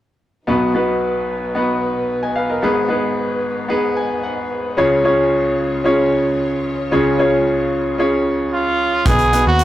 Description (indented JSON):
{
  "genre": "piano-driven pop",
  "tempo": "112 BPM",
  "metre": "4/4",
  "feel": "straight",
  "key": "Db mixolydian",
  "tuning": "A4 = 439 Hz",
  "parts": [
    { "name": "bright grand piano", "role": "accompaniment", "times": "0.5-9.6 s", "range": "Ab1 to Ab5", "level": "-16 LUFS", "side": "equal", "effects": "none" },
    { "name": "warm studio string section", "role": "sustained chords", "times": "0.5-9.0 s", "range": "Ab2 to Db5", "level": "-28 LUFS", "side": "equal", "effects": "none" },
    { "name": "bright trumpet", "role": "melody", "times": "8.5-9.6 s", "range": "F4 to Ab4", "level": "-15 LUFS", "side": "right 2 dB", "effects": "none" },
    { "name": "vintage muted fingered electric bass", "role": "bass", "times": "9.1-9.6 s", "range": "Cb2 to Eb2", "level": "-17 LUFS", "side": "equal", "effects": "none" },
    { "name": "modern studio drum kit", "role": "drums", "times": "9.1-9.6 s", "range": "hi-hat, kick drum", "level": "-18 LUFS", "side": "equal", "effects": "none" }
  ],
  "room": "wet studio reverb, RT60 0.5 s",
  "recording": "rough rehearsal-room recording, tube saturation",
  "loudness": "-15 LUFS",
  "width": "side -13 dB against mid",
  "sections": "0.5-9.1 A section",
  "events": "grand piano fill 3.7-4.8",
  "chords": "0.5 Cb; 2.6 Abm; 4.8 Db; 9.1 Cb",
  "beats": "| 0.48 1.02 1.55 2.09 | 2.62 3.16 3.70 4.23 | 4.77 5.31 5.84 6.38 | 6.91 7.45 7.99 8.52 | 9.06 9.59"
}